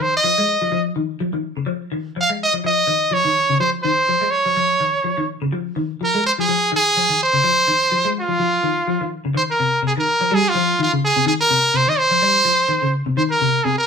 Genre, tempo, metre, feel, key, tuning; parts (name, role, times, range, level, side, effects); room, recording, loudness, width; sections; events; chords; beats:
afrobeat; 125 BPM; 4/4; swing 55% on 16ths; F minor; A4 = 440 Hz
brilliant trumpet; melody; 0.0-13.9 s; F4 to F5; -16 LUFS; right 1 dB
semi-hollow electric guitar; arpeggios; 0.0-13.8 s; C3 to Ab3; -22 LUFS; left 3 dB; phaser
moderate studio reverb, RT60 0.6 s; band playing live in one room; -16 LUFS; side -6 dB against mid
0.0-9.3 A section; 9.3-13.9 B section
0.0 Fm7; 0.7 Dbadd9 (rootless); 1.7 Fm7; 2.6 Dbadd9; 3.6 Fm7; 4.6 Dbadd9; 5.5 Fm7; 6.5 Dbmaj9 (rootless); 7.4 Fm7; 8.4 Dbadd9 (rootless); 9.3 N.C.; 10.3 Dbmaj9#11; 11.3 N.C.; 12.2 Cmadd11; 13.2 N.C.
0.24 0.72 1.20 | 1.68 2.15 2.63 3.12 | 3.59 4.07 4.55 5.03 | 5.51 5.99 6.47 6.95 | 7.43 7.91 8.39 8.87 | 9.35 9.82 10.30 10.78 | 11.26 11.74 12.21 12.69 | 13.17 13.65